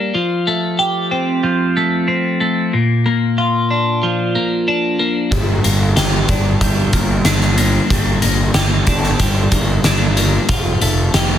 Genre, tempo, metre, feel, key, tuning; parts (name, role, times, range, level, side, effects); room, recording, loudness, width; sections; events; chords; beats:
quiet-loud alternative rock; 93 BPM; 4/4; straight; G minor; A4 = 439 Hz
twelve-string electric guitar; arpeggios; 0.0-11.4 s; G2 to G4; -16 LUFS; left 1 dB; phaser
fuzz picked electric bass; bass; 5.3-11.4 s; F1 to G1; -17 LUFS; equal; overdrive
oversized low-tuned drum kit; drums; 5.3-11.3 s; hi-hat, kick drum, snare drum; -17 LUFS; equal
light reverb, small room ambience; dense, heavily limited modern master; -13 LUFS; side -10 dB against mid
0.0-11.4 A section
0.1 Fadd9; 2.7 Bb; 5.3 Gm; 10.5 Fadd9
| 0.14 0.79 1.44 2.09 | 2.73 3.38 4.03 4.68 | 5.32 5.97 6.62 7.26 | 7.91 8.56 9.20 9.85 | 10.50 11.14